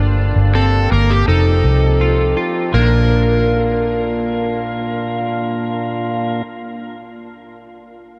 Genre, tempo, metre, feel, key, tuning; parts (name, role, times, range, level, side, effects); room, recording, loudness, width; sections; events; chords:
dream pop; 82 BPM; 4/4; straight; Bb major; A4 = 440 Hz
percussive tonewheel organ; sustained chords; 0.0-6.4 s; Bb2 to F5; -24 LUFS; equal; overdrive, stopped rotary speaker
semi-hollow electric guitar; arpeggios; 0.0-6.7 s; Bb3 to Bb4; -26 LUFS; equal; analog chorus, tape echo
vintage muted fingered electric bass; bass; 0.0-6.6 s; F1 to C2; -17 LUFS; equal
overdriven slide guitar; melody; 0.6-6.4 s; G4 to Bb4; -23 LUFS; equal; tape echo
moderate huge ambient reverb, RT60 7.7 s; dark, warm production; -16 LUFS; mono
0.0-2.7 A section; 2.7-5.7 B section
0.0 Gmadd9; 1.3 F7; 2.7 Bb